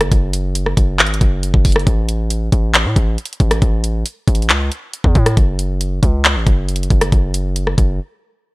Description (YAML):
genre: hip hop, trap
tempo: 137 BPM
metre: 4/4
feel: half-time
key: unclear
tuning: A4 = 440 Hz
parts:
  - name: distorted 808-style bass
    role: bass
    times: 0.0-8.0 s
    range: F#1 to A2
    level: -18 LUFS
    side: equal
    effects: distortion
  - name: trap drum kit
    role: drums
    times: 0.0-7.9 s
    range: handclaps, hi-hat, kick drum, rim click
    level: -14 LUFS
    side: equal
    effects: vintage 12-bit sampler grit
room: digital ambience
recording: none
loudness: -13 LUFS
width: side -22 dB against mid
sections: 0.0-8.5 A section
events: break 8.0-8.5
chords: none